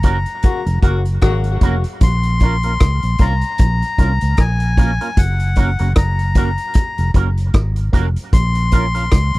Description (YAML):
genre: roots reggae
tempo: 76 BPM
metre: 4/4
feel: swing 58% on 16ths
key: unclear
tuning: A4 = 439 Hz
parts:
  - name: melodica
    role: melody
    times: 0.0-9.4 s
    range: Gb5 to C6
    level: -23 LUFS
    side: left 3 dB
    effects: tape echo
  - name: electric guitar with an envelope filter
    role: accompaniment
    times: 0.0-9.0 s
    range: Bb3 to Bb4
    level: -26 LUFS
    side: right 5 dB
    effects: lush chorus, tape echo
  - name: vintage muted fingered electric bass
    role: bass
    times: 0.0-9.4 s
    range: F1 to Db2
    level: -17 LUFS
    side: equal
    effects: tube saturation
  - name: vintage drum kit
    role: drums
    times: 0.0-9.4 s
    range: hi-hat, kick drum, rim click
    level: -14 LUFS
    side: equal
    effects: none
  - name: warm horn section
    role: second line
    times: 0.4-1.8 s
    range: Db3 to Gb4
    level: -24 LUFS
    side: left 5 dB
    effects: tape echo
room: little or no reverb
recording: none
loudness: -14 LUFS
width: side -20 dB against mid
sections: 0.0-9.4 A section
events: band accent 0.0-2.0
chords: 0.0 Gb; 2.0 Bbm; 5.2 Gb; 8.3 Bbm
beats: 0.43 1.22 | 2.01 2.80 3.59 4.38 | 5.17 5.96 6.75 7.54 | 8.33 9.12